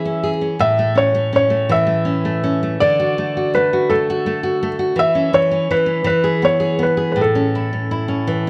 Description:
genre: children's music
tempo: 54 BPM (dotted quarters)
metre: 6/8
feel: straight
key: A major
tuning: A4 = 440 Hz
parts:
  - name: felt-muted upright piano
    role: melody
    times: 0.0-8.5 s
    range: A4 to E5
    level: -20 LUFS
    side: equal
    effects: none
  - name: nylon-string guitar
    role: accompaniment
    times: 0.0-8.5 s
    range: A2 to G#4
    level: -21 LUFS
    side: equal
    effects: none
room: light reverb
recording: close, detailed microphones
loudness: -17 LUFS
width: mono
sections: 0.0-8.5 A section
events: none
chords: 0.0 E6; 0.6 A; 2.8 D; 5.0 C#m7/E; 6.1 E; 7.2 A

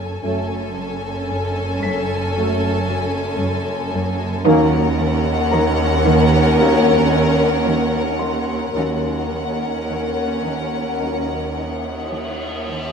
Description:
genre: cinematic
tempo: 53-57 BPM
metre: 4/4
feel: straight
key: unclear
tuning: A4 = 440 Hz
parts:
  - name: warm studio violin section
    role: melody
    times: 0.0-12.9 s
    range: F#5 to G#5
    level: -27 LUFS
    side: left 6 dB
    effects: none
  - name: warm symphonic violin section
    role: second line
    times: 0.0-12.9 s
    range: A4 to A#4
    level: -24 LUFS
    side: left 4 dB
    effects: none
  - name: warm studio viola section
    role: accompaniment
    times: 0.0-12.9 s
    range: C#4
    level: -26 LUFS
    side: right 2 dB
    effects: none
  - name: warm studio cello section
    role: riff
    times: 0.0-12.9 s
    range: F#2 to D#4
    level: -23 LUFS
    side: right 2 dB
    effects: none
  - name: rich symphonic cello section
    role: bass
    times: 0.0-12.9 s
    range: D#2 to F#2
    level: -24 LUFS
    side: right 3 dB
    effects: none
  - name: rich symphonic double bass section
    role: bass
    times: 0.0-12.9 s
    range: F#1 to D#2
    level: -24 LUFS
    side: right 2 dB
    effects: none
  - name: felt-muted upright piano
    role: texture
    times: 0.0-12.9 s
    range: A#4 to B6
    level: -31 LUFS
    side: left 2 dB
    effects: none
  - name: dark trombone section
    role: sustained chords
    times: 0.2-11.4 s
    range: F#3 to A#3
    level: -25 LUFS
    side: right 1 dB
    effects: none
  - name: mellow French horn section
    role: sustained chords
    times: 0.2-11.4 s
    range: C#4 to A#4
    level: -26 LUFS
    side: left 5 dB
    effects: none
room: wet recital hall reverb, RT60 1.7 s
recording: minimal, uncompressed stereo recording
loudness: -17 LUFS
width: side -6 dB against mid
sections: 0.0-12.9 A section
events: none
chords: 0.0 F#madd9; 4.5 D#m7

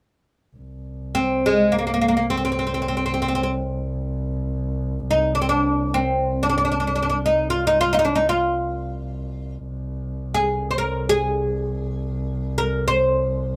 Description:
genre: turkish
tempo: free time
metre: none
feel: none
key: C makam ussak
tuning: A4 = 440 Hz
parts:
  - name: warm double bass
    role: drone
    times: 0.6-13.6 s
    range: C2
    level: -29 LUFS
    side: equal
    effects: none
  - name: oud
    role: melody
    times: 1.1-13.6 s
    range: Ab3 to C5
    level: -22 LUFS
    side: equal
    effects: none
room: light reverb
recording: close, detailed microphones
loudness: -22 LUFS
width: mono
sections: 0.6-13.6 A section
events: none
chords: none

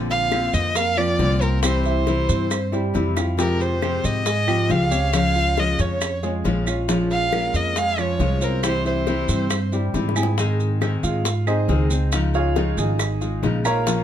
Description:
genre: latin, Cuban son and guajira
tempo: 137 BPM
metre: 4/4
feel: straight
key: unclear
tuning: A4 = 440 Hz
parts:
  - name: nylon-string guitar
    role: accompaniment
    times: 0.0-14.0 s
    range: C3 to Ab4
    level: -25 LUFS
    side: left 4 dB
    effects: none
  - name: clear grand piano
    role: arpeggios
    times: 0.0-14.0 s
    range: F3 to Bb5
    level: -27 LUFS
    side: right 3 dB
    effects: none
  - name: upright bass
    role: bass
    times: 0.0-14.0 s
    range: Ab1 to Ab2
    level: -23 LUFS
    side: right 1 dB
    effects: none
  - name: dark violin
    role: melody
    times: 0.1-9.7 s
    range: Bb4 to F5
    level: -24 LUFS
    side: right 1 dB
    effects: none
  - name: bongos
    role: percussion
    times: 0.1-14.0 s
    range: none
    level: -30 LUFS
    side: left 8 dB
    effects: none
  - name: maracas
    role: percussion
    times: 0.1-14.0 s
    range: none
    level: -32 LUFS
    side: right 7 dB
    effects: none
  - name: claves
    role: percussion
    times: 0.3-13.9 s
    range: none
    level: -32 LUFS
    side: right 6 dB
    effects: none
room: light reverb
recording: close, detailed microphones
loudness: -18 LUFS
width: side -10 dB against mid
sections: 0.0-10.4 A section; 10.4-14.0 B section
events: drum fill 3.2, 9.9-10.4; grand piano solo 10.4-14.0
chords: 0.0 Bbadd9; 1.6 C; 3.4 Fmadd9; 5.1 Db; 6.9 Bbm7; 8.6 C; 10.4 Ab; 12.1 Dbadd9

